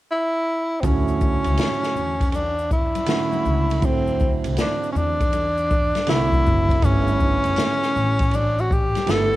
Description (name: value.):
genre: hip hop, jazz-hop.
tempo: 80 BPM.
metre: 4/4.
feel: swing 65% on 16ths.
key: D major.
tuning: A4 = 440 Hz.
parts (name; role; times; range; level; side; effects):
breathy tenor saxophone; melody; 0.1-9.4 s; C4 to A4; -22 LUFS; equal; cassette tape, analog delay.
dark baby grand piano; accompaniment; 0.8-9.4 s; D3 to F#4; -27 LUFS; right 7 dB; none.
upright bass; bass; 0.8-9.4 s; F#1 to E2; -24 LUFS; equal; none.
open jazz drum kit; drums; 0.8-9.3 s; hi-hat, kick drum, ride cymbal, snare drum; -23 LUFS; equal; cassette tape.
maracas and congas; percussion; 0.8-9.4 s; none; -36 LUFS; left 9 dB; none.
room: studio reverb.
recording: home recording on cassette.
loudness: -18 LUFS.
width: side -16 dB against mid.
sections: 0.8-9.4 A section.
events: none.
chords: 0.0 N.C.; 0.8 Dmaj9; 3.8 D9; 6.8 G6.